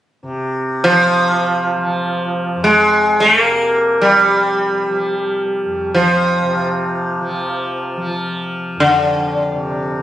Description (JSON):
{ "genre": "indian classical", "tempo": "free time", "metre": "none", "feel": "none", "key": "F raga bhimpalasi", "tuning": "A4 = 440 Hz", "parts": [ { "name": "tanpura", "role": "drone", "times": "0.2-10.0 s", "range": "F2 to F3", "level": "-24 LUFS", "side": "left 1 dB", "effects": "none" }, { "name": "sitar", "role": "melody", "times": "0.8-10.0 s", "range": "D3 to Bb3", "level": "-13 LUFS", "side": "equal", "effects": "none" } ], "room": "light reverb", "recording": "recorded on a phone in the room, studio reverb, compression", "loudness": "-13 LUFS", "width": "side -12 dB against mid", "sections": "0.2-10.0 A section", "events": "none", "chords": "none" }